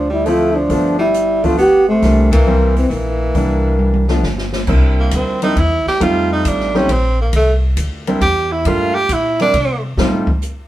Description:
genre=jazz, small-group swing and bop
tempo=136 BPM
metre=3/4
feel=swing 68% on 8ths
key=C mixolydian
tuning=A4 = 436 Hz
part: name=dark trombone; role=melody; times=0.0-4.2 s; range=A3 to G4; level=-15 LUFS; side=equal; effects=none
part: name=bright tenor saxophone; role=second line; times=0.0-9.8 s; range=C3 to G4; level=-18 LUFS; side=right 2 dB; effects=none
part: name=upright bass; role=bass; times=0.0-10.3 s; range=G1 to C3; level=-17 LUFS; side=equal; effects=none
part: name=clear concert grand piano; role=accompaniment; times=0.3-10.3 s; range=E3 to G4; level=-18 LUFS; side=equal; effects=none
part: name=open jazz drum kit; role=drums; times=0.3-10.6 s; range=crash cymbal, hi-hat, kick drum, ride cymbal, snare drum, toms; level=-24 LUFS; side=equal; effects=none
room=moderate studio reverb, RT60 0.7 s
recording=band playing live in one room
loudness=-12 LUFS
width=side -14 dB against mid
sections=0.0-4.7 A section; 4.7-10.7 B section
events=band accent 2.2; drum fill 3.8-4.7; tenor saxophone solo 4.7-10.7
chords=0.0 Dm7; 0.7 G7; 2.0 C7; 4.2 N.C.; 4.7 C7; 6.0 F7; 7.3 C; 8.7 Gm7; 9.5 Csus2; 10.0 F7

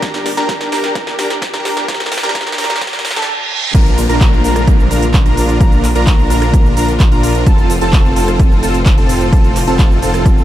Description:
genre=EDM, festival progressive house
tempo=129 BPM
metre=4/4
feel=straight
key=unclear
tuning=A4 = 440 Hz
part: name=clear symphonic string section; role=sustained chords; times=0.0-10.4 s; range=A2 to F4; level=-23 LUFS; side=left 2 dB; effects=sidechain pumping
part: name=plucky unison lead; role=arpeggios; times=0.0-10.4 s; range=A5 to Bb5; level=-22 LUFS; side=right 1 dB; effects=sidechain pumping, dub echo
part: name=supersaw chords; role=riff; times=0.0-10.4 s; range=C4 to Bb4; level=-18 LUFS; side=equal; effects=sidechain pumping, dub echo
part: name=wide detuned saw bass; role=bass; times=0.0-10.4 s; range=F1 to Bb1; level=-18 LUFS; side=equal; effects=chorus, sidechain pumping
part: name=big-room dance drum kit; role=drums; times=0.0-10.4 s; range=crash cymbal, handclaps, hi-hat, rim click, shaker, snare drum, toms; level=-21 LUFS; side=equal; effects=high-pass filter on snare, high-pass filter on hats, high-pass filter on toms, high-pass filter on cymbals, high-pass filter on perc, high-pass filter on room
part: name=electronic kick drum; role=drums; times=0.0-10.3 s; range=none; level=-11 LUFS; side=equal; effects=none
part: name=riser, reverse cymbal and downlifter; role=sound effects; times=0.9-7.5 s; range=none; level=-24 LUFS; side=equal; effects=none
room=light reverb, digital ambience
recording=dark, warm production, high-pass filter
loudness=-10 LUFS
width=side -13 dB against mid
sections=0.0-3.7 A section; 3.7-10.4 B section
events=build-up 0.0-3.7; drum fill 0.0-3.3, 3.4-3.7; filter sweep on supersaw synth 0.0-3.7; filter sweep 0.0-3.7; reverse cymbal 2.8-3.7; drop 3.7-10.4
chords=0.0 Gm; 3.7 Bb; 7.5 F

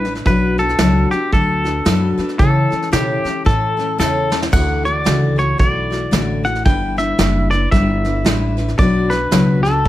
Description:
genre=honky-tonk and classic country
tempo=113 BPM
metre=4/4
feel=swing 60% on 8ths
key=D major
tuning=A4 = 440 Hz
part: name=twangy electric guitar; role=melody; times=0.0-9.9 s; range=G4 to G5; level=-20 LUFS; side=left 1 dB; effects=plate reverb
part: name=picked steel-string acoustic guitar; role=accompaniment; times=0.0-9.9 s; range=B2 to B4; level=-19 LUFS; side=left 2 dB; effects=none
part: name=upright bass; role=bass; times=0.0-9.9 s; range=F#1 to C#3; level=-20 LUFS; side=right 1 dB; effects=none
part: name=soft brush drum kit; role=drums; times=0.0-9.9 s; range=hi-hat, kick drum, snare drum, splash cymbal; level=-19 LUFS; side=right 1 dB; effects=none
room=light reverb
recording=none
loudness=-14 LUFS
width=side -14 dB against mid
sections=0.0-9.9 A section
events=drum fill 4.0-4.5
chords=0.3 Bm; 2.4 A; 4.5 Dadd9; 6.7 G6; 8.8 Bm

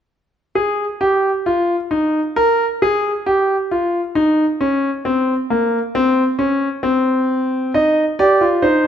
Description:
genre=classical, baroque-style 3-part fugue for grand piano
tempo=67 BPM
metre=4/4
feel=straight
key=unclear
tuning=A4 = 437 Hz
part: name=clear concert grand piano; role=solo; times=0.6-8.9 s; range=Bb3 to Eb5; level=-15 LUFS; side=equal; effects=none
room=moderate recital hall reverb, RT60 1.5 s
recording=none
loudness=-15 LUFS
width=side -9 dB against mid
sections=0.6-8.9 A section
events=none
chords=0.6 N.C.; 7.7 Eb

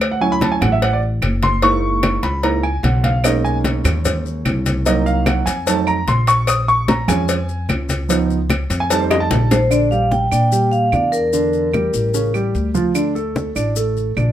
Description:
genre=Afro-Cuban jazz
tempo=148 BPM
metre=4/4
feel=straight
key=Bb major from 9.7 s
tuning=A4 = 440 Hz
part: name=upright bass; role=bass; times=0.0-14.3 s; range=F#1 to Bb2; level=-20 LUFS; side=equal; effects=none
part: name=claves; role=percussion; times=0.0-14.3 s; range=none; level=-28 LUFS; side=right 6 dB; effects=none
part: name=congas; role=percussion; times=0.0-14.3 s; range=none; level=-23 LUFS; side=left 1 dB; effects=none
part: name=cowbell and bongos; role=percussion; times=0.0-9.7 s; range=none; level=-24 LUFS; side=left 4 dB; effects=none
part: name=warm concert grand piano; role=accompaniment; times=0.1-14.3 s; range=C#3 to D#6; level=-19 LUFS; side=right 2 dB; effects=none
part: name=maracas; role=percussion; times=3.2-14.3 s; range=none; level=-30 LUFS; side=left 10 dB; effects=none
part: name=vibraphone with medium mallets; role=melody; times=9.5-12.3 s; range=Bb4 to G5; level=-18 LUFS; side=equal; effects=plate reverb
room=light reverb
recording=none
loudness=-15 LUFS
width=side -11 dB against mid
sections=0.0-9.7 A section; 9.7-14.3 B section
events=grand piano solo 0.0-9.7; drum fill 9.1-9.7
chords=0.0 Dmaj9; 1.6 F#13; 3.2 Bmaj13; 4.9 Cm7b5; 5.7 F7b9; 6.5 A#m7; 8.1 C#7; 8.9 F7; 9.7 Bb6; 11.3 Em7b5; 12.1 A7; 13.0 D5

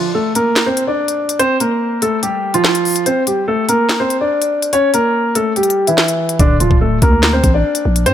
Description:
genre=hip hop, drill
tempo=144 BPM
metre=4/4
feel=half-time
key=unclear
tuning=A4 = 440 Hz
part: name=dark baby grand piano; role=melody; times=0.0-8.1 s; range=D3 to D5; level=-14 LUFS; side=equal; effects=low-pass filter
part: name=drill drum kit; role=drums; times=0.4-8.1 s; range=handclaps, hi-hat, kick drum, snare drum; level=-16 LUFS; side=equal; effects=none
part: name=growling 808-style bass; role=bass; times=6.4-8.1 s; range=D1 to Bb2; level=-15 LUFS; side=equal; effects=none
room=light reverb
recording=none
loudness=-12 LUFS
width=side -10 dB against mid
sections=0.0-8.1 A section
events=break 0.0-6.4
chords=0.0 D5; 1.4 Bb5; 3.1 C5; 4.7 A7(no3) (rootless); 6.4 N.C.

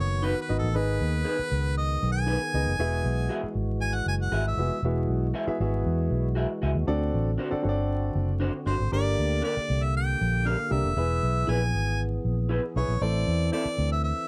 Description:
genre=soul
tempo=118 BPM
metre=4/4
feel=straight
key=unclear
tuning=A4 = 440 Hz
part: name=clear harmonica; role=melody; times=0.0-4.8, 8.7-14.3 s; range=A4 to G#5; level=-33 LUFS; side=equal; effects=none
part: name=tonewheel organ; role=sustained chords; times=0.0-14.3 s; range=D3 to A4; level=-37 LUFS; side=equal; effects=overdrive, chorus vibrato, slow rotary speaker
part: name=vintage muted fingered electric bass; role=bass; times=0.0-14.1 s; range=E1 to E2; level=-29 LUFS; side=equal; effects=none
part: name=electric guitar through a small old amp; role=stabs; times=0.2-13.6 s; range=C4 to E5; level=-34 LUFS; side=equal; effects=none
part: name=warm concert grand piano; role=accompaniment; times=0.5-13.7 s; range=B3 to E5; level=-34 LUFS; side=equal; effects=none
room=light reverb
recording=dark, warm production, vinyl crackle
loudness=-27 LUFS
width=mono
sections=0.0-4.8 A section; 4.8-8.9 B section; 8.9-14.3 C section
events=harmonica solo 0.0-4.8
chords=0.0 B; 0.8 G#m; 2.8 Eadd9; 6.9 D7; 8.9 Gm; 11.0 E; 13.0 Am

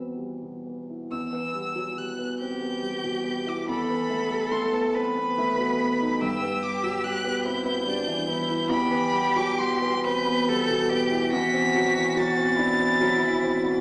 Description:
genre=classical, slow romantic movement for piano trio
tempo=47 BPM (dotted quarters)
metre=6/8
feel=rubato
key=E minor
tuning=A4 = 440 Hz
part: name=dark concert grand piano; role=accompaniment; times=0.0-13.8 s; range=E2 to F#4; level=-26 LUFS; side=equal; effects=none
part: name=clear violin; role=melody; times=1.1-13.8 s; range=A5 to B6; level=-28 LUFS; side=equal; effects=none
part: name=rich cello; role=second line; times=2.4-13.8 s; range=D4 to B4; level=-28 LUFS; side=equal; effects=none
room=wet recital hall reverb, RT60 1.3 s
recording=heard from further back in the room, small speaker sound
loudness=-22 LUFS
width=side -29 dB against mid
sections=0.0-1.1 A section; 1.1-13.8 B section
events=none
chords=0.0 Em; 3.7 B7(no3)/E; 6.2 Em/G; 8.7 Em; 11.3 F#m7b5/E

